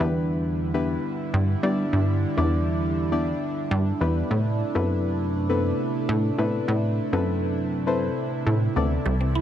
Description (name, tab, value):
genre	pop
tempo	101 BPM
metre	4/4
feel	straight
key	unclear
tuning	A4 = 439 Hz
part	deep mellow chord stab	accompaniment	0.0-9.1 s	B3 to D5	-28 LUFS	left 4 dB	chorus
part	chorused pulse-width pad	sustained chords	0.0-9.4 s	C3 to E4	-28 LUFS	right 2 dB	none
part	plucky analog bass	bass	0.0-9.4 s	C2 to G3	-24 LUFS	equal	none
part	mallet-like synth pluck	arpeggios	9.1-9.4 s	G3 to E4	-29 LUFS	right 4 dB	chorus, phaser
room	moderate huge ambient reverb, RT60 6.8 s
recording	dreamy mix soaked in reverb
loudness	-22 LUFS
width	side -10 dB against mid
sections	0.0-9.4 A section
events	none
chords	0.0 G6; 4.3 Amadd9